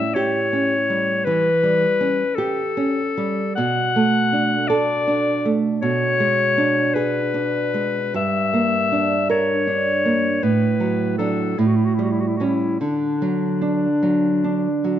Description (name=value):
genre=romantic duo for clarinet and classical guitar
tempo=48-55 BPM (dotted quarters)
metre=12/8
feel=rubato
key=D major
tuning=A4 = 440 Hz
part: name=bright clarinet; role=melody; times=0.0-15.0 s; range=D4 to F#5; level=-21 LUFS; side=left 4 dB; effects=none
part: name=nylon-string guitar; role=accompaniment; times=0.0-15.0 s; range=G2 to Bb4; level=-20 LUFS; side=right 3 dB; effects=none
room=moderate recital hall reverb, RT60 1.5 s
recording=dark, warm production, nothing above 7.9 kHz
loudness=-17 LUFS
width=side -10 dB against mid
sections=0.0-15.0 A section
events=none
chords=0.0 A7; 3.6 Bm7; 5.8 Bm69; 8.2 Em7b5/G; 10.4 D/A; 11.6 A7; 12.8 D